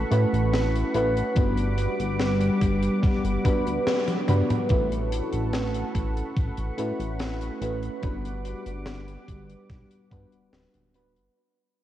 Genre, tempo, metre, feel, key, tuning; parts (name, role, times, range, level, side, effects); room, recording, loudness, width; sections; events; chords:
vaporwave; 72 BPM; 4/4; straight; A4 = 440 Hz
mellow FM electric piano; accompaniment; 0.0-11.4 s; G3 to B4; -28 LUFS; equal; lush chorus, tape echo
lush unison pad; sustained chords; 0.0-11.3 s; G3 to D6; -31 LUFS; left 1 dB; chorus, vintage 12-bit sampler grit
chorused synth bass; bass; 0.0-11.3 s; D1 to A2; -27 LUFS; equal
deep reggae drum kit; drums; 0.1-11.3 s; hi-hat, snare drum, toms; -32 LUFS; left 1 dB; studio reverb
electronic kick drum; drums; 1.4-10.3 s; -26 LUFS; equal; studio reverb
wet church reverb, RT60 3.9 s; dreamy mix soaked in reverb, cassette tape; -23 LUFS; side -12 dB against mid
0.0-4.7 A section; 4.7-11.4 B section
band accent 3.9-4.3; drum fill 4.1-4.7; fade-out 4.7-11.4
0.0 A69; 1.4 Gmaj7; 4.7 A69; 8.0 Gmaj7